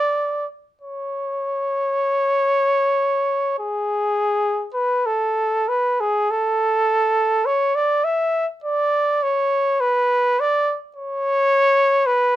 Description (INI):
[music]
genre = classical, free, expressive piece for unaccompanied trumpet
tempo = 36-55 BPM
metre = 4/4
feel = rubato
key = unclear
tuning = A4 = 438 Hz
[part]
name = mellow trumpet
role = solo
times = 0.0-12.4 s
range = G#4 to E5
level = -18 LUFS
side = equal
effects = none
[sound]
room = little or no reverb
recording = none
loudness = -18 LUFS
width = side -13 dB against mid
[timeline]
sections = 0.0-5.0 A section; 5.0-12.4 B section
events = none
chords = none